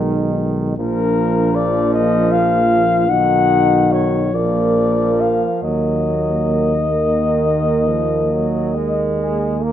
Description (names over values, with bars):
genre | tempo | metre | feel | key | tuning
classical, hymn-like piece for brass band | 44-53 BPM (dotted quarters) | 12/8 | rubato | Eb minor | A4 = 435 Hz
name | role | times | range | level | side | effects
mellow flugelhorn | melody | 0.0-9.7 s | Ab4 to F#5 | -19 LUFS | left 6 dB | none
dark French horn section | second line | 0.0-9.7 s | D4 to Bb4 | -22 LUFS | right 3 dB | none
bright trombone | accompaniment | 0.0-9.7 s | Eb3 to Bb3 | -23 LUFS | right 4 dB | none
warm euphonium | accompaniment | 0.0-9.7 s | Ab3 to D#4 | -22 LUFS | right 1 dB | none
mellow tuba | bass | 0.0-9.7 s | Bb1 to Eb2 | -21 LUFS | right 1 dB | none
room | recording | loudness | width
light reverb | close, detailed microphones | -14 LUFS | side -10 dB against mid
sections
0.0-9.7 A section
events
none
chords
0.0 Abm/Cb; 0.8 Bb; 3.1 B; 4.3 Bb; 5.6 Ebm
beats
| 0.79 1.93 3.09 4.34 | 5.63 6.97 8.33 9.63